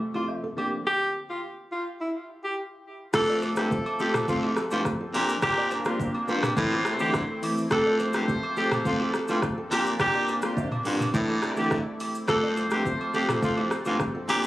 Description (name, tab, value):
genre	afrobeats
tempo	105 BPM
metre	4/4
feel	straight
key	F major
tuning	A4 = 440 Hz
part	lush unison pad	sustained chords	0.0-14.5 s	F2 to A4	-36 LUFS	equal	chorus
part	bell-like tine electric piano	accompaniment	0.1-14.5 s	E3 to F4	-31 LUFS	equal	medium stereo tremolo
part	agogo bells and woodblock	percussion	0.1-14.4 s	none	-34 LUFS	right 1 dB	none
part	clear alto saxophone	melody	0.2-14.4 s	E4 to A4	-29 LUFS	equal	digital delay
part	nylon-string guitar	riff	0.2-14.4 s	E4 to D5	-39 LUFS	right 2 dB	none
part	clear horn section	second line	3.1-14.5 s	F3 to D5	-34 LUFS	left 1 dB	none
part	breathy baritone saxophone	bass	3.1-14.5 s	F2 to D3	-29 LUFS	equal	none
part	afro-pop drum kit	drums	3.1-14.5 s	crash cymbal, hi-hat, kick drum, rim click, shaker, toms	-30 LUFS	equal	none
room	light reverb, small room ambience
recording	recorded on a phone in the room, studio reverb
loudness	-24 LUFS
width	side -16 dB against mid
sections	0.0-3.1 A section; 3.1-14.5 B section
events	none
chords	0.0 F; 0.6 Bbadd9; 2.0 N.C.; 3.1 F; 5.1 Bbadd9; 6.6 Am; 7.7 F; 9.7 Bbadd9; 11.1 Am; 12.3 F